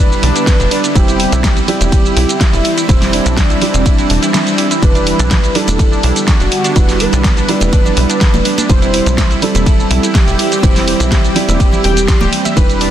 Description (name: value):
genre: progressive house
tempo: 124 BPM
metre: 4/4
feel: straight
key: unclear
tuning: A4 = 440 Hz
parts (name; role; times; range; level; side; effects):
- warm velvety synth lead; melody; 0.0-12.9 s; D4 to C5; -20 LUFS; left 1 dB; chorus, dub echo
- shimmering ambient pad; sustained chords; 0.1-12.9 s; D3 to G4; -21 LUFS; left 2 dB; chorus, built-in reverb, sidechain pumping
- analog pluck; arpeggios; 0.0-12.9 s; D4 to C6; -22 LUFS; right 3 dB; chorus, sidechain pumping, dub echo
- felt-muted upright piano; stabs; 0.0-12.9 s; G3 to D5; -18 LUFS; right 4 dB; sidechain pumping
- tight sequencer bass; bass; 0.0-12.9 s; D1 to B1; -17 LUFS; equal; tube saturation, sidechain pumping
- pop drum kit; drums; 0.0-12.9 s; hi-hat, ride cymbal, shaker, snare drum; -18 LUFS; equal; none
- electronic kick drum; drums; 0.5-12.7 s; none; -12 LUFS; equal; none
- congas; percussion; 5.3-12.5 s; none; -24 LUFS; right 3 dB; none
room: light reverb, digital ambience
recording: dense, heavily limited modern master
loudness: -10 LUFS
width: side -11 dB against mid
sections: 0.0-12.9 A section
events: none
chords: 0.0 Em7; 1.0 C/E; 4.8 Em7; 8.7 C/E